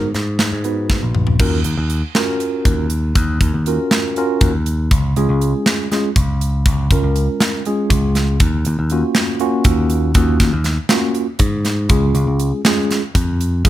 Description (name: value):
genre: progressive instrumental, band music in an uneven meter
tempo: 240 BPM (eighths)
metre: 7/8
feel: straight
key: unclear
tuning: A4 = 440 Hz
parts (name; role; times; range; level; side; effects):
- bright tine electric piano; accompaniment; 0.0-13.7 s; G#3 to B4; -19 LUFS; right 1 dB; medium stereo tremolo
- picked electric bass; bass; 0.0-13.7 s; A#1 to G#2; -17 LUFS; equal; none
- tight metal drum kit; drums; 0.1-13.7 s; crash cymbal, hi-hat, kick drum, snare drum, toms; -17 LUFS; equal; none
room: light reverb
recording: none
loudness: -14 LUFS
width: side -13 dB against mid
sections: 0.0-1.4 A section; 1.4-13.7 B section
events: drum fill 0.9-1.4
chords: 0.0 G#m7; 1.4 D#m7; 4.9 C#; 8.4 D#m7; 11.9 C#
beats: 0.15 0.40 0.65 0.90 1.15 | 1.40 1.65 1.90 2.15 2.40 2.65 2.91 | 3.16 3.41 3.66 3.91 4.16 4.41 4.66 | 4.91 5.16 5.41 5.66 5.91 6.16 6.41 | 6.66 6.91 7.16 7.41 7.66 7.91 8.16 | 8.41 8.66 8.91 9.16 9.41 9.66 9.91 | 10.16 10.41 10.66 10.91 11.16 11.40 11.65 | 11.90 12.15 12.40 12.65 12.90 13.15 13.40 | 13.65